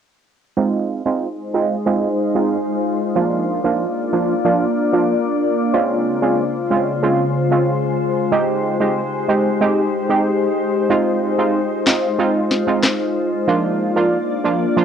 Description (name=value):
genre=dancehall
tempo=93 BPM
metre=4/4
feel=straight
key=F minor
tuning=A4 = 440 Hz
part: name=synth brass stab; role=accompaniment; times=0.6-14.8 s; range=F3 to G4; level=-18 LUFS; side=right 4 dB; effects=chorus, low-pass filter, cassette tape, plate reverb
part: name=glassy FM pad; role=sustained chords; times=1.2-14.8 s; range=Db3 to D5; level=-18 LUFS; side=left 2 dB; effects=ensemble chorus, built-in reverb, low-pass filter, cassette tape
part: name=electronic snare drum, handclaps and rim click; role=drums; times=11.9-13.0 s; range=none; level=-16 LUFS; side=left 2 dB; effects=cassette tape
room=wet studio reverb, RT60 0.6 s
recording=home recording on cassette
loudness=-16 LUFS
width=side -8 dB against mid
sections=0.6-14.8 A section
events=filter sweep 0.6-14.8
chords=0.6 Fm7; 3.2 Bb; 5.7 Dbmaj7; 8.3 Abmaj7; 10.9 Fm7; 13.5 Bb